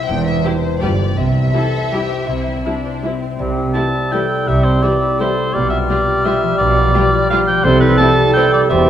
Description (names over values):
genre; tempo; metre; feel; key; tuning
classical; 167 BPM; 3/4; uneven beats, rubato; C major; A4 = 435 Hz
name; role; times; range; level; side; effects
muted symphonic violin section; melody; 0.0-8.4 s; G4 to G5; -26 LUFS; left 5 dB; none
concert harp; arpeggios; 0.0-8.9 s; E2 to E5; -22 LUFS; left 6 dB; none
muted studio cello section; bass; 0.1-8.9 s; E2 to C3; -21 LUFS; right 2 dB; none
muted studio double bass section; bass; 0.1-8.9 s; E1 to C2; -22 LUFS; right 2 dB; none
muted studio viola section; accompaniment; 0.4-8.4 s; G3 to F4; -26 LUFS; equal; none
muted studio violin section; second line; 0.5-8.5 s; C4 to C5; -28 LUFS; left 3 dB; none
silver concert flute; second line; 3.4-8.9 s; C6 to F6; -23 LUFS; left 3 dB; none
warm clarinet; second line; 3.4-8.9 s; G4 to A4; -20 LUFS; right 1 dB; none
mellow bassoon; accompaniment; 3.4-8.9 s; G3; -22 LUFS; right 4 dB; none
clear cor anglais; second line; 3.7-8.9 s; B4 to A5; -18 LUFS; right 2 dB; none
dark French horn section; sustained chords; 3.7-8.9 s; E3 to C5; -24 LUFS; left 4 dB; none
timpani; percussion; 7.6-8.1 s; C3; -23 LUFS; right 2 dB; none
room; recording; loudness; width
moderate scoring stage reverb, RT60 1.6 s; none; -13 LUFS; side -10 dB against mid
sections
0.0-3.4 A section; 3.4-8.9 A section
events
none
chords
0.1 C/E; 0.8 G7; 1.2 C; 5.5 G7/B; 7.6 C